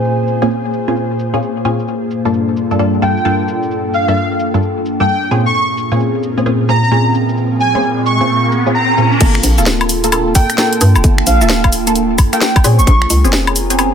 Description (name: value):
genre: UK garage, two-step garage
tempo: 131 BPM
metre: 4/4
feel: swing 64% on 16ths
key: G minor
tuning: A4 = 435 Hz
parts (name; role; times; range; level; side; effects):
- ethereal airy pad; sustained chords; 0.0-13.9 s; G2 to C5; -21 LUFS; equal; ensemble chorus, built-in reverb, sidechain pumping
- punchy chord stab; stabs; 0.0-13.9 s; G2 to A4; -16 LUFS; equal; chorus, phaser, ping-pong delay
- garage drum kit; drums; 0.0-13.9 s; cabasa, crash cymbal, finger snaps, hi-hat, snare drum, woodblock; -16 LUFS; left 1 dB; low-pass filter on perc, low-pass filter on hats, low-pass filter on cymbals, low-pass filter on snare
- warbly tape-like pad; texture; 0.0-13.9 s; Bb3 to Bb5; -21 LUFS; equal; chorus, built-in reverb, sidechain pumping
- airy dreamy lead; melody; 3.0-13.0 s; F5 to Db6; -17 LUFS; equal; chorus, ping-pong delay
- riser; sound effects; 7.1-9.2 s; none; -21 LUFS; left 1 dB; none
- hollow knocking FM bass; bass; 9.2-13.9 s; D1 to Bb2; -14 LUFS; equal; none
- electronic kick drum; drums; 9.2-13.0 s; none; -11 LUFS; equal; none
room: light reverb, digital ambience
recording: dense, heavily limited modern master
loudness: -11 LUFS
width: side -7 dB against mid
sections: 0.0-9.2 A section; 9.2-13.9 B section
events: riser 7.1-9.2; drop 9.2-13.9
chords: 0.0 Bbm9; 1.9 Gm9; 5.3 Bbm9; 9.2 Gm9; 12.6 Bbm9